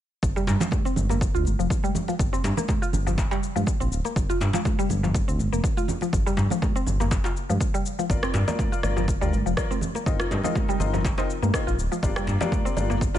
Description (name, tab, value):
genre	afro house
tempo	122 BPM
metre	4/4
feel	swing 54% on 16ths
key	G minor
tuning	A4 = 440 Hz
part	smooth synth bass	bass	0.2-13.2 s	D1 to G2	-25 LUFS	equal	sidechain pumping
part	electronic kick drum	drums	0.2-13.1 s	none	-26 LUFS	equal	overdrive, studio reverb
part	electronic shaker and rim click	drums	0.2-13.2 s	none	-35 LUFS	left 2 dB	studio reverb
part	mallet-like synth pluck	arpeggios	0.4-13.2 s	F3 to F4	-29 LUFS	left 1 dB	chorus, phaser, sidechain pumping, ping-pong delay
part	djembe	percussion	0.4-13.0 s	none	-34 LUFS	left 1 dB	none
part	congas	percussion	0.5-13.1 s	none	-32 LUFS	right 5 dB	none
part	felt-muted upright piano	stabs	8.1-13.2 s	Bb3 to Eb5	-30 LUFS	left 6 dB	sidechain pumping, ping-pong delay
room	studio reverb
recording	nothing above 10.9 kHz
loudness	-22 LUFS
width	side -12 dB against mid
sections	0.2-13.2 A section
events	none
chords	0.2 N.C.; 2.2 Fsus4/G; 4.2 Gm7; 10.1 F7sus4/G; 12.0 Gm7